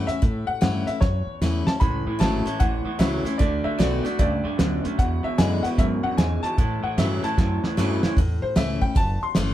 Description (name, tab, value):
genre	rockabilly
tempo	151 BPM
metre	4/4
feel	swing 64% on 8ths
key	A mixolydian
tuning	A4 = 440 Hz
part	clear upright piano	melody	0.0-9.5 s	C5 to C6	-29 LUFS	left 2 dB	none
part	picked steel-string acoustic guitar	accompaniment	0.0-9.5 s	E2 to F#4	-29 LUFS	left 4 dB	none
part	woody fretless electric bass	bass	0.0-9.5 s	F#1 to A2	-27 LUFS	equal	none
part	cloth-damped thuddy drum kit	drums	0.1-9.5 s	hi-hat, kick drum, snare drum	-22 LUFS	equal	none
part	electric guitar through a small old amp	riff	1.8-8.2 s	E2 to B3	-27 LUFS	right 3 dB	none
room	light reverb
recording	band playing live in one room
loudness	-20 LUFS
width	side -13 dB against mid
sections	0.0-8.2 A section; 8.2-9.5 B section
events	drum fill 1.0-1.8, 7.4-8.2; upright piano solo 8.2-9.5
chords	0.0 A; 3.4 D; 5.0 E7; 6.6 A